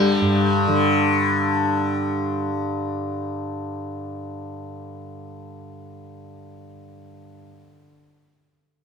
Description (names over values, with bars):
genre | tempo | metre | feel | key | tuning
indian classical | 190 BPM | 7/4 | straight | unclear | A4 = 442 Hz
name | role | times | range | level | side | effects
sitar | melody | 0.0-2.5 s | G3 | -25 LUFS | left 2 dB | none
tanpura | drone | 0.0-7.8 s | G2 to G3 | -22 LUFS | left 1 dB | none
room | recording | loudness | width
studio ambience | dry, close 1970s-style studio recording | -20 LUFS | side -6 dB against mid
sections
0.0-1.0 A section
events
none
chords
none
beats
0.10 0.42 0.73